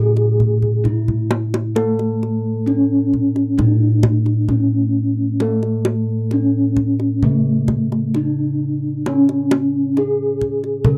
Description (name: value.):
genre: Javanese gamelan.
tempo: 66 BPM.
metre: 4/4.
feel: straight.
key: C# pelog.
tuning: A4 = 441 Hz.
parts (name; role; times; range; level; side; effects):
gamelan-type bronze metallophone; melody; 0.0-11.0 s; A3 to A4; -21 LUFS; equal; none.
gamelan-type bossed gongs; bass; 0.0-11.0 s; A2 to A4; -21 LUFS; equal; none.
kendang; percussion; 0.2-11.0 s; none; -24 LUFS; equal; none.
room: light reverb.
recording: dry, close 1970s-style studio recording.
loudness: -18 LUFS.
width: mono.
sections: 0.0-11.0 A section.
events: drum fill 0.6-1.8.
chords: none.